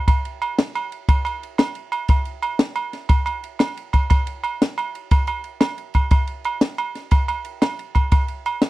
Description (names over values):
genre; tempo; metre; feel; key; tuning
highlife; 119 BPM (dotted quarters); 12/8; straight; none; none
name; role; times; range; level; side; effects
compact cocktail drum kit; drums; 0.1-8.7 s; kick drum, ride cymbal, snare drum; -17 LUFS; equal; none
agogo bells; percussion; 0.1-8.6 s; none; -25 LUFS; right 5 dB; none
room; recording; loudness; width
little or no reverb; dry, close 1970s-style studio recording; -19 LUFS; side -18 dB against mid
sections
0.0-8.7 A section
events
none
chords
none